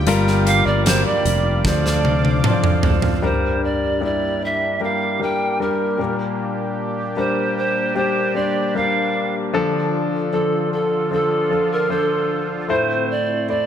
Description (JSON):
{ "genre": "pop ballad", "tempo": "76 BPM", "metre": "4/4", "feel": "straight", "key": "D minor", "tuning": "A4 = 440 Hz", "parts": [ { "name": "clear concert grand piano", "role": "accompaniment", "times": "0.0-13.7 s", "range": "G2 to D5", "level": "-22 LUFS", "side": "left 4 dB", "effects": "none" }, { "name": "sweeping resonant pad", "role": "sustained chords", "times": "0.0-13.7 s", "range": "D3 to D6", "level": "-27 LUFS", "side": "right 2 dB", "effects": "chorus" }, { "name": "direct-recorded clean electric guitar", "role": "arpeggios", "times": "0.0-3.2 s", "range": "G2 to A4", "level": "-28 LUFS", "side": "right 8 dB", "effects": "none" }, { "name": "sustaining fretless electric bass", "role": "bass", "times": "0.0-2.4 s", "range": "F1 to D2", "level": "-19 LUFS", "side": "right 1 dB", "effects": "none" }, { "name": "huge arena drum kit", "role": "drums", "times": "0.1-3.2 s", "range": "hi-hat, kick drum, snare drum, toms", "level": "-20 LUFS", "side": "equal", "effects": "none" }, { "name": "breathy reedy pan flute", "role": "melody", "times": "0.5-13.7 s", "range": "A4 to G5", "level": "-21 LUFS", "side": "right 2 dB", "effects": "none" } ], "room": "light reverb, small room ambience", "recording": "none", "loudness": "-17 LUFS", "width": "side -9 dB against mid", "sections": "0.0-3.2 A section; 3.2-13.7 B section", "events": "drum fill 1.6-3.2", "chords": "0.1 Gm7; 1.6 Dm7; 3.2 Gm; 6.0 Bb6; 9.5 Dm; 12.7 Am", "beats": "| 0.07 0.86 1.65 2.44 | 3.23 4.02 4.81 5.60 | 6.39 7.17 7.96 8.75 | 9.54 10.33 11.12 11.91 | 12.70 13.49" }